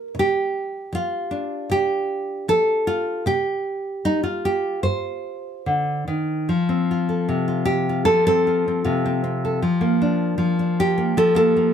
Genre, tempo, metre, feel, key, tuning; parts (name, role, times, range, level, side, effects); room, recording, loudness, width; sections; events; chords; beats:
folk, solo fingerstyle acoustic guitar; 77 BPM; 4/4; rubato; A4 = 440 Hz
nylon-string guitar; solo; 0.0-11.7 s; G2 to C5; -19 LUFS; equal
light reverb; close, detailed microphones; -19 LUFS; side -8 dB against mid
0.0-6.5 A section; 6.5-11.7 B section
0.2 Dm7/C; 3.3 Cm; 6.5 F; 9.6 Bb/F
| 0.16 0.93 1.70 2.47 | 3.25 4.04 4.82 5.65 | 6.47 7.27 8.06 8.85 | 9.62 10.39 11.17